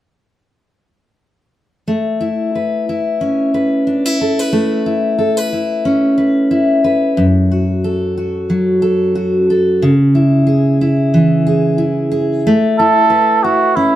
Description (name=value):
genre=pop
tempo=91 BPM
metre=4/4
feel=swing 55% on 16ths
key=A major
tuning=A4 = 440 Hz
part: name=fingerpicked steel-string acoustic guitar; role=accompaniment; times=1.9-14.0 s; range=F#2 to B4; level=-12 LUFS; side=equal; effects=none
part: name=trumpet with cup mute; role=melody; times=12.8-14.0 s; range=E4 to A4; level=-11 LUFS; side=right 4 dB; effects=none
room=wet studio reverb, RT60 0.8 s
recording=band playing live in one room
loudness=-12 LUFS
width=side -13 dB against mid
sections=1.9-12.4 A section; 12.4-14.0 B section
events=none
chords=1.9 Aadd9; 7.2 F#m; 9.8 C#m; 12.4 Aadd9